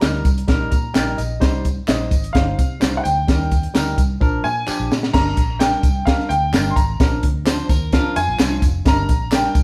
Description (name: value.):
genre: uptempo 1960s-style soul.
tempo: 129 BPM.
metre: 4/4.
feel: straight.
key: unclear.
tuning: A4 = 441 Hz.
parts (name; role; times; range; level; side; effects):
warm baby grand piano; melody; 0.0-9.6 s; Eb5 to C6; -25 LUFS; equal; none.
barky tine electric piano; accompaniment; 0.0-9.6 s; F3 to Bb5; -28 LUFS; equal; none.
vintage muted fingered electric bass; bass; 0.0-9.6 s; F1 to C3; -26 LUFS; equal; none.
compact cocktail drum kit; drums; 0.0-9.6 s; crash cymbal, hi-hat, kick drum, snare drum; -20 LUFS; equal; none.
handclaps and tambourine; percussion; 0.0-9.6 s; none; -34 LUFS; equal; none.
electric guitar at the edge of break-up; riff; 7.5-8.6 s; F4 to C5; -33 LUFS; equal; none.
room: moderate studio reverb, RT60 0.7 s.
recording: band playing live in one room.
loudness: -18 LUFS.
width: mono.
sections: 0.0-5.1 A section; 5.1-9.6 B section.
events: tine electric piano fill 0.5-1.4; drum fill 4.2-5.1.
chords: 0.0 Eb; 1.4 Cm; 3.3 Eb; 4.2 Bb; 5.1 Gm; 7.0 Bb; 8.9 Gm.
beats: 0.02 0.49 0.95 | 1.42 1.89 2.35 2.82 | 3.28 3.75 4.21 4.68 | 5.14 5.61 6.07 6.54 | 7.00 7.46 7.93 8.39 | 8.86 9.32.